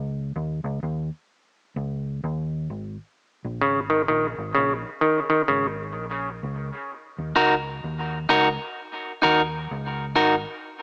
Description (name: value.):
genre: reggae.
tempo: 64 BPM.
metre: 4/4.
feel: swing 60% on 16ths.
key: Eb minor.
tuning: A4 = 440 Hz.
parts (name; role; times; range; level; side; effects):
vintage muted fingered electric bass; bass; 0.0-10.4 s; Ab1 to Eb2; -33 LUFS; equal; none.
mellow clav; arpeggios; 3.6-5.7 s; Db3 to Eb3; -26 LUFS; equal; dub echo.
electric guitar at the edge of break-up; accompaniment; 7.4-10.3 s; Eb4 to Bb4; -23 LUFS; equal; dub echo.
room: moderate plate reverb, RT60 2.4 s.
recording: small speaker sound.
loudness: -25 LUFS.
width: mono.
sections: 0.0-6.9 A section; 6.9-10.8 B section.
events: break 0.0-6.9.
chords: 0.0 Absus4 (rootless); 3.1 Bbm; 6.9 Ebm.